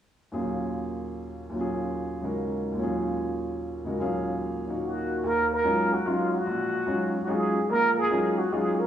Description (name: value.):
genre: jazz.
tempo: 147 BPM.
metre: 3/4.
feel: swing 66% on 8ths.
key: Eb minor.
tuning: A4 = 440 Hz.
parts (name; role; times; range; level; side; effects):
clear baby grand piano; accompaniment; 0.3-8.8 s; Bb1 to F5; -27 LUFS; equal; none.
trumpet with plunger mute; melody; 4.9-8.9 s; F4 to Bb4; -25 LUFS; right 1 dB; none.
room: wet recital hall reverb, RT60 1.6 s.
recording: recorded in a church or concert hall.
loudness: -25 LUFS.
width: side -10 dB against mid.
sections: 0.3-5.2 A section; 5.2-8.9 B section.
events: none.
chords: 0.3 Ebm11.